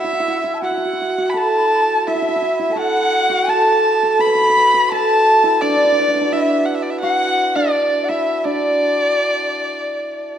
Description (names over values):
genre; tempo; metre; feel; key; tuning
chinese traditional, Chinese chamber ensemble; 84 BPM; 4/4; rubato; D gong mode; A4 = 438 Hz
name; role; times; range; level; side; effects
rich erhu; melody; 0.0-10.4 s; D5 to B5; -18 LUFS; right 2 dB; none
bright reedy large dizi; second line; 0.0-10.4 s; D5 to B5; -21 LUFS; left 4 dB; none
hammered dulcimer; second line; 0.0-10.4 s; D4 to B4; -20 LUFS; right 2 dB; none
room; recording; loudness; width
moderate recital hall reverb, RT60 1.4 s; none; -14 LUFS; side -9 dB against mid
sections
0.0-10.4 A section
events
none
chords
none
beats
0.61 1.34 2.06 | 2.77 3.48 4.20 4.90 | 5.61 6.32 7.02 7.74 | 8.45 9.16 9.89